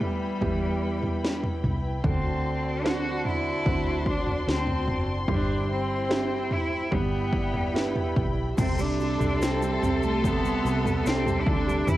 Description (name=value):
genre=pop ballad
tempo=74 BPM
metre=4/4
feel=straight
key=C major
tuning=A4 = 440 Hz
part: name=clear cello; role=melody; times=0.0-12.0 s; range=G3 to F#4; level=-30 LUFS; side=left 2 dB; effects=cassette tape
part: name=clear grand piano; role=accompaniment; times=0.0-12.0 s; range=C3 to B4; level=-31 LUFS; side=right 5 dB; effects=cassette tape
part: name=warm studio string section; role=sustained chords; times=0.0-12.0 s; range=E4 to C6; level=-34 LUFS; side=left 2 dB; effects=cassette tape
part: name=vintage muted fingered electric bass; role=bass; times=0.0-12.0 s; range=F#1 to E2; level=-31 LUFS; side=equal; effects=none
part: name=house drum kit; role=drums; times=0.0-12.0 s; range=crash cymbal, kick drum, snare drum, toms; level=-29 LUFS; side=equal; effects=overdrive, cassette tape
part: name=warm symphonic violin section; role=second line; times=8.6-12.0 s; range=A4 to B4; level=-32 LUFS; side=equal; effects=cassette tape
part: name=tube shaker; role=percussion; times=8.6-12.0 s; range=none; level=-47 LUFS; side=left 8 dB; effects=none
room=light reverb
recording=home recording on cassette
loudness=-24 LUFS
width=side -15 dB against mid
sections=0.0-8.6 A section; 8.6-12.0 B section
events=none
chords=0.0 Em; 2.0 D7; 5.3 C/G; 6.9 G6; 8.6 C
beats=0.41 1.23 | 2.04 2.85 3.66 4.47 | 5.28 6.09 6.91 7.74 | 8.58 9.41 10.23 11.06 | 11.88